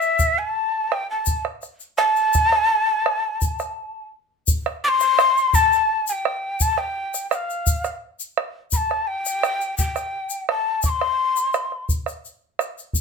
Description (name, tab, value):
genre	andean folk, Andean ensemble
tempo	85 BPM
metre	3/4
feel	straight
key	A minor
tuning	A4 = 439 Hz
part	breathy mellow quena	melody	0.0-11.9 s	E5 to D6	-20 LUFS	left 2 dB	none
part	egg shaker	percussion	0.0-13.0 s	none	-27 LUFS	left 5 dB	none
part	bombo	percussion	0.2-13.0 s	none	-22 LUFS	right 2 dB	none
room	moderate studio reverb, RT60 0.6 s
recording	minimal, uncompressed stereo recording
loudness	-19 LUFS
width	side -5 dB against mid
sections	0.0-4.5 A section; 4.5-13.0 B section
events	stop 3.8-4.5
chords	none